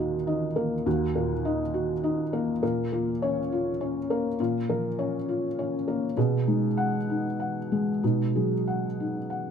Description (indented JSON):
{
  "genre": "neoclassical minimalist piano",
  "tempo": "67 BPM (dotted quarters)",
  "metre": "6/8",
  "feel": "uneven beats, rubato",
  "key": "Eb minor",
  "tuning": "A4 = 440 Hz",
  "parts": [
    { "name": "felt-muted upright piano", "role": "solo", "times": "0.0-9.5 s", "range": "Eb2 to Gb5", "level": "-25 LUFS", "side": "equal", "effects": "none" }
  ],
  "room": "light reverb",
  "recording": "close, detailed microphones",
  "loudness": "-25 LUFS",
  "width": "side -7 dB against mid",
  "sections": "0.0-9.5 A section",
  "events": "none",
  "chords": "0.0 Ebm; 2.6 Bbm; 6.2 Abm7/Cb",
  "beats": "| 0.85 1.73 | 2.62 3.50 | 4.39 5.27 | 6.16 7.08 | 8.02 8.99"
}